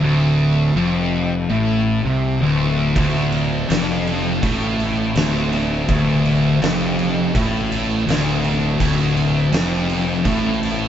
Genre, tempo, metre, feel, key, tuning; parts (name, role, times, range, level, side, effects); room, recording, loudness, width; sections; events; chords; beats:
stoner and doom metal; 82 BPM; 4/4; straight; D minor; A4 = 440 Hz
overdriven electric guitar; riff; 0.0-10.9 s; D2 to C3; -23 LUFS; right 2 dB
thick fuzz guitar; riff; 0.0-10.9 s; D2 to C3; -20 LUFS; left 4 dB; distortion
thick fuzz guitar; riff; 0.0-10.9 s; D2 to C3; -25 LUFS; right 6 dB; distortion
fuzz fingered electric bass; bass; 0.0-10.9 s; D1 to C2; -24 LUFS; right 1 dB; overdrive
oversized low-tuned drum kit; drums; 3.0-10.8 s; crash cymbal, kick drum, snare drum; -23 LUFS; right 1 dB
moderate stone room reverb, RT60 1.0 s; band playing live in one room, nothing above 7.8 kHz; -16 LUFS; side -10 dB against mid
0.0-10.9 A section
0.0 Dm
| 0.04 0.77 1.50 2.23 | 2.96 3.69 4.42 5.15 | 5.88 6.61 7.34 8.07 | 8.79 9.52 10.25